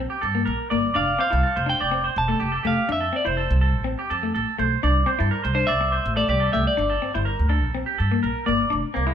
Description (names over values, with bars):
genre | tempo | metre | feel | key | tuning
highlife | 124 BPM | 4/4 | straight | F major | A4 = 440 Hz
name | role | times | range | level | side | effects
clean electric guitar | accompaniment | 0.0-9.1 s | A3 to E4 | -27 LUFS | left 6 dB | none
upright bass | bass | 0.0-9.1 s | E1 to G2 | -24 LUFS | equal | none
clean electric guitar | arpeggios | 0.1-9.1 s | Ab3 to D5 | -25 LUFS | right 3 dB | spring reverb
clean electric guitar | melody | 1.0-7.1 s | C5 to A5 | -24 LUFS | equal | spring reverb
room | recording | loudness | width
moderate studio reverb, RT60 0.7 s | band playing live in one room | -20 LUFS | side -8 dB against mid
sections
0.0-8.7 A section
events
none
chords
0.0 Gm; 0.9 Fmaj7; 4.8 C; 6.8 Gm